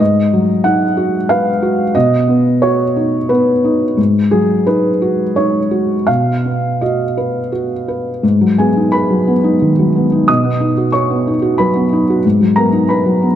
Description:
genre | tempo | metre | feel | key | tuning
neoclassical minimalist piano | 80-94 BPM | 3/4 | rubato | G# dorian | A4 = 440 Hz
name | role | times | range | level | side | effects
felt-muted upright piano | solo | 0.0-13.4 s | G#2 to D#6 | -12 LUFS | equal | none
room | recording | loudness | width
moderate concert hall reverb, RT60 1.9 s | dark, warm production | -12 LUFS | side -10 dB against mid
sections
0.0-8.2 A section; 8.2-13.4 A section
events
none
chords
0.0 G#m7; 1.9 B; 4.0 G#m7; 6.1 B; 8.2 G#m7; 10.3 B; 12.2 G#m7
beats
| 0.00 0.65 1.30 | 1.95 2.62 3.30 | 3.98 4.67 5.36 | 6.08 6.81 7.52 | 8.23 8.93 9.61 | 10.28 10.94 11.59 | 12.24 12.90

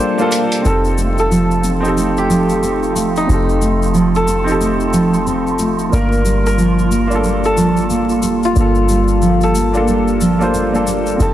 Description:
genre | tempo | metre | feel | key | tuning
trip hop | 91 BPM | 4/4 | swing 59% on 16ths | G minor | A4 = 440 Hz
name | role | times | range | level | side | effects
santur | melody | 0.0-11.3 s | Eb4 to Bb4 | -20 LUFS | equal | tape echo
warm upright piano | accompaniment | 0.0-11.3 s | Bb3 to C5 | -20 LUFS | equal | harmonic tremolo, vintage 12-bit sampler grit, tape echo
warbly tape-like pad | sustained chords | 0.0-11.3 s | F3 to A4 | -22 LUFS | equal | chorus, built-in reverb
egg shaker | percussion | 0.0-11.3 s | none | -29 LUFS | left 5 dB | none
wind-like tuned noise texture | texture | 0.0-11.3 s | F4 | -27 LUFS | right 5 dB | built-in reverb
electronic hi-hat | drums | 0.3-0.6 s | none | -24 LUFS | right 2 dB | overdrive
nylon-string guitar | arpeggios | 0.6-11.3 s | F3 to C4 | -18 LUFS | right 1 dB | vintage 12-bit sampler grit, low-pass filter, tape echo
soft 808-style bass | bass | 0.7-11.3 s | F1 to G1 | -19 LUFS | equal | none
room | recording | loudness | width
studio reverb | dense, heavily limited modern master, vinyl crackle | -12 LUFS | side -12 dB against mid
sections
0.7-11.3 A section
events
filter sweep on nylon-string guitar 0.7-11.3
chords
0.0 Gm7; 0.7 F7; 5.9 Gm7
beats
| 0.65 1.31 1.97 2.63 | 3.29 3.95 4.61 5.26 | 5.92 6.58 7.24 7.90 | 8.56 9.22 9.88 10.54 | 11.20

